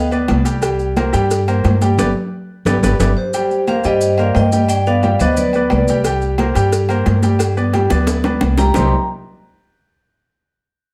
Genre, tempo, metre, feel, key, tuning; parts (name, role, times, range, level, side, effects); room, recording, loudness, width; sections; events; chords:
latin, salsa; 177 BPM; 4/4; straight; C minor; A4 = 440 Hz
vibraphone with medium hard mallets; melody; 0.0-0.1, 3.2-6.0, 8.6-9.1 s; G4 to C6; -21 LUFS; equal
clear grand piano; accompaniment; 0.0-8.9 s; C3 to G5; -21 LUFS; equal
upright bass; bass; 0.0-8.9 s; G1 to G2; -20 LUFS; equal
agogo bells and timbales; percussion; 0.1-8.8 s; -27 LUFS; equal
congas; percussion; 0.1-8.8 s; -25 LUFS; equal
maracas; percussion; 0.1-8.8 s; -35 LUFS; equal
cowbell and bongos; percussion; 0.3-3.1, 6.0-8.8 s; -27 LUFS; equal
moderate large studio reverb, RT60 0.9 s; -16 LUFS; mono
0.0-3.3 A section; 3.3-8.8 B section; 8.8-10.1 C section
band accent 2.0-3.3; drum fill 2.7-3.3, 7.9-8.8
0.0 G; 0.6 C5; 2.0 G; 3.3 Cm7; 4.7 G7; 6.0 C5; 7.4 G; 8.8 Cm7